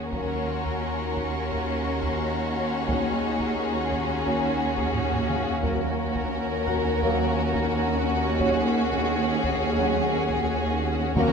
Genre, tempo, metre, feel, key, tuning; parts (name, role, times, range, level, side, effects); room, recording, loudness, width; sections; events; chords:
cinematic, suspense film score; 87 BPM; 4/4; straight; A4 = 439 Hz
rich studio violin section; melody; 0.0-11.3 s; Ab4 to Bb4; -31 LUFS; left 4 dB
clear studio violin section; second line; 0.0-11.3 s; Gb4; -31 LUFS; left 2 dB
bright studio viola section; accompaniment; 0.0-11.3 s; Db4; -31 LUFS; left 1 dB
rich studio cello section; bass; 0.0-11.3 s; Eb2; -30 LUFS; right 3 dB
rich studio double bass section; bass; 0.0-11.3 s; Eb2; -33 LUFS; right 3 dB
analog drone; drone; 0.0-11.3 s; Eb2; -32 LUFS; right 1 dB; chorus
dark trombone section; sustained chords; 0.1-11.3 s; Gb3 to Db4; -31 LUFS; right 2 dB
taiko ensemble; drums; 0.1-11.3 s; -35 LUFS; equal
rich studio violin section; texture; 0.1-5.3, 11.2-11.3 s; Bb5 to Db6; -38 LUFS; left 3 dB
timpani; percussion; 2.9-3.9, 11.2-11.3 s; Eb3; -30 LUFS; left 1 dB
Celtic harp; texture; 4.3-10.6 s; Gb4 to Ab5; -36 LUFS; left 4 dB
wet scoring stage reverb, RT60 1.9 s; minimal, uncompressed stereo recording; -23 LUFS; side -6 dB against mid
0.0-11.3 A section
drum fill 5.0-5.6
0.1 Gb/Eb; 2.9 Dbsus4/Eb; 5.6 Gb/Eb; 8.4 Dbsus4/Eb